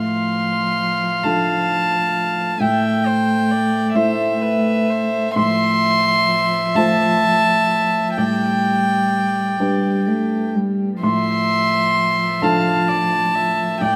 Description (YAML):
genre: neoclassical piano and strings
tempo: 43 BPM (dotted quarters)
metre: 6/8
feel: rubato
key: unclear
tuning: A4 = 441 Hz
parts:
  - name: rich violin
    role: melody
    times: 0.0-14.0 s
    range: E5 to C6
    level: -22 LUFS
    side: equal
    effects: none
  - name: dark cello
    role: second line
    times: 0.0-14.0 s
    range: F3 to A3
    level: -26 LUFS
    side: equal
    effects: none
  - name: felt-muted upright piano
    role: accompaniment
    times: 0.0-14.0 s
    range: A2 to C6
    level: -24 LUFS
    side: equal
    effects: none
  - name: rich viola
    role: accompaniment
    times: 0.0-14.0 s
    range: B4 to F5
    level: -27 LUFS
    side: equal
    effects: none
room: moderate plate reverb, RT60 3.5 s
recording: none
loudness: -18 LUFS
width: mono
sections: 0.0-14.0 A section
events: none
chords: 0.0 Dm/A; 2.6 Am7; 5.4 F/A; 8.2 G/A; 11.0 Dmadd9/A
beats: 1.24 | 2.61 3.95 | 5.36 6.75 | 8.17 9.60 | 11.03 12.43 | 13.81